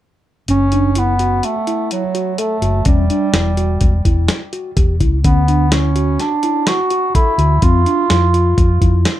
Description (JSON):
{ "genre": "progressive instrumental, band music in an uneven meter", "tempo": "126 BPM", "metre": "5/4", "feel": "straight", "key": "D major", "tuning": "A4 = 440 Hz", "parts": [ { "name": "warm bass clarinet", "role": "melody", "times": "0.5-9.1 s", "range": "F#3 to F#4", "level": "-18 LUFS", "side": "right 2 dB", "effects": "tape echo" }, { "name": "mellow tine electric piano", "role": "arpeggios", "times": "0.5-9.2 s", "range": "C4 to A4", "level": "-22 LUFS", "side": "left 1 dB", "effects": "slow stereo tremolo" }, { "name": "hollow-body short-scale fingered electric bass", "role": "bass", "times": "0.5-9.0 s", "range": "E1 to F2", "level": "-15 LUFS", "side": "equal", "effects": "none" }, { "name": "dusty soul sampler-style drum kit", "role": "drums", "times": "0.5-9.2 s", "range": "hi-hat, kick drum, snare drum", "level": "-16 LUFS", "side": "equal", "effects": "none" } ], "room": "light reverb", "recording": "dark, warm production", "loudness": "-13 LUFS", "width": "side -13 dB against mid", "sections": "0.5-9.2 A section", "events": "none", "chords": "0.5 F#m; 2.9 Em; 5.2 D6; 7.6 N.C.", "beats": "| 0.48 0.96 1.43 1.91 2.39 | 2.86 3.34 3.82 4.29 4.77 | 5.25 5.72 6.20 6.68 7.15 | 7.63 8.11 8.58 9.06" }